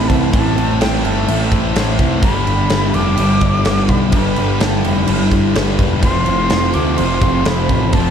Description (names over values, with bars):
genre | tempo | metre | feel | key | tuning
rock, shoegaze and dream pop | 126 BPM | 4/4 | straight | unclear | A4 = 441 Hz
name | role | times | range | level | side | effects
concert flute | melody | 0.0-8.1 s | G5 to D6 | -23 LUFS | left 2 dB | tape echo
picked twelve-string acoustic guitar | arpeggios | 0.0-8.1 s | G3 to C5 | -26 LUFS | right 7 dB | lush chorus, tape echo
overdriven semi-hollow guitar | riff | 0.0-8.1 s | F2 to A4 | -22 LUFS | right 10 dB | reverse reverb
thick fuzz guitar | riff | 0.0-8.1 s | F2 to A3 | -20 LUFS | left 9 dB | distortion, lush chorus
tight distorted guitar | riff | 0.0-8.1 s | F2 to A3 | -22 LUFS | equal | distortion
growling picked electric bass | bass | 0.0-8.1 s | E1 to D2 | -19 LUFS | equal | overdrive
big rock drum kit | drums | 0.1-8.0 s | crash cymbal, kick drum, snare drum | -18 LUFS | equal | none
room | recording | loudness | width
light reverb | dark, warm production | -12 LUFS | side -8 dB against mid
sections
0.0-8.1 A section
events
none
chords
0.0 Am7; 2.2 G6; 6.0 F